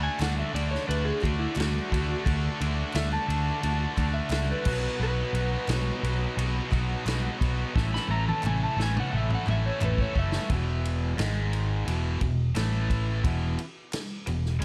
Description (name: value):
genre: classic rock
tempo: 87 BPM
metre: 4/4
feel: straight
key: E mixolydian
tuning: A4 = 440 Hz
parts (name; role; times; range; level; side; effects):
- electric slide guitar; melody; 0.0-10.5 s; E4 to B5; -36 LUFS; equal; none
- overdriven electric guitar; riff; 0.0-14.6 s; E2 to A4; -36 LUFS; equal; none
- tight distorted guitar; riff; 0.0-14.6 s; E2 to D4; -37 LUFS; equal; distortion
- fingered electric bass; bass; 0.0-14.6 s; E1 to D2; -30 LUFS; equal; none
- vintage drum kit; drums; 0.2-14.6 s; crash cymbal, kick drum, ride cymbal, snare drum, toms; -34 LUFS; equal; none
- group handclap; percussion; 0.2-14.1 s; none; -48 LUFS; equal; none
room: small room reverb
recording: none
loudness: -28 LUFS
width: mono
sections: 0.0-10.5 A section; 10.5-14.6 B section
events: electric slide guitar solo 0.0-10.5; drum fill 7.7-10.5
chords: 0.0 D; 4.7 B; 7.7 A; 10.5 E5; 11.2 G#5; 11.9 E5; 12.6 A5; 13.2 E5